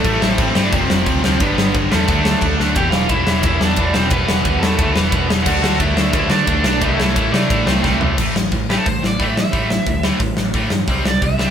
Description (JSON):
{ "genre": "punk rock", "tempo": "177 BPM", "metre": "4/4", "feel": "straight", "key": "A minor", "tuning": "A4 = 443 Hz", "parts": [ { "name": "raw garage guitar", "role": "melody", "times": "0.0-11.5 s", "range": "A3 to G5", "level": "-21 LUFS", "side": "right 1 dB", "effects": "overdrive, tape echo" }, { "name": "distorted electric guitar", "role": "riff", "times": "0.0-11.5 s", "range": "E2 to D4", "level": "-20 LUFS", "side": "equal", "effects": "overdrive" }, { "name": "thick fuzz guitar", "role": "riff", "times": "0.0-2.8, 5.5-8.2 s", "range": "F2 to D4", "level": "-24 LUFS", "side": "left 1 dB", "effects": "distortion" }, { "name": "overdriven picked electric bass", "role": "bass", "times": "0.0-11.4 s", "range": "E1 to D3", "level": "-22 LUFS", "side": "equal", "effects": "none" }, { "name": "big rock drum kit", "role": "drums", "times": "0.0-11.5 s", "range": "crash cymbal, hi-hat, kick drum, ride cymbal, snare drum, toms", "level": "-18 LUFS", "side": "equal", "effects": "none" } ], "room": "light reverb", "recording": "band playing live in one room", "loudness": "-14 LUFS", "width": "side -8 dB against mid", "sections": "0.0-2.8 A section; 2.8-8.2 B section; 8.2-11.5 C section", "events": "drum fill 2.6, 7.8-8.2; overdriven electric guitar solo 8.2-11.5", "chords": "0.1 Am; 0.7 F5; 1.4 G; 2.1 D5; 2.8 E5; 5.5 D; 6.8 Am; 8.2 A5; 10.9 C" }